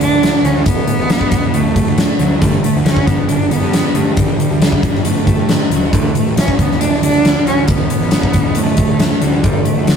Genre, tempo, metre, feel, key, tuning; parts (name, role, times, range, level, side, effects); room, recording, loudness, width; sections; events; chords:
quiet-loud alternative rock; 137 BPM; 4/4; straight; A4 = 440 Hz
bright cello; melody; 0.0-10.0 s; F#3 to D4; -18 LUFS; right 3 dB; analog delay
electric guitar at the edge of break-up; arpeggios; 0.0-10.0 s; D2 to G3; -21 LUFS; equal
fuzz picked electric bass; bass; 0.0-10.0 s; D1 to G2; -20 LUFS; equal; overdrive
huge arena drum kit; drums; 0.0-10.0 s; hi-hat, kick drum, snare drum; -14 LUFS; left 1 dB
light reverb; rough rehearsal-room recording; -11 LUFS; side -7 dB against mid
0.0-10.0 A section
0.0 D5; 2.4 Gsus2; 5.9 D5; 9.4 Gsus2